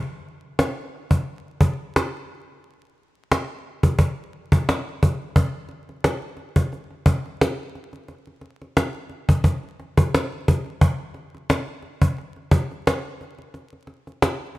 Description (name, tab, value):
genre	hip hop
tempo	88 BPM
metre	4/4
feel	swing 56% on 16ths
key	none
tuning	none
part	cajon	drums	0.6-14.6 s	none	-19 LUFS	equal	none
room	small room ambience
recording	vinyl crackle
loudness	-20 LUFS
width	side -18 dB against mid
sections	0.0-14.6 A section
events	break 0.0-5.4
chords	none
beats	0.58 1.27 1.95 | 2.63 3.31 3.99 4.67 | 5.36 6.04 6.72 7.40 | 8.08 8.77 9.45 10.13 | 10.81 11.49 12.18 12.86 | 13.54 14.22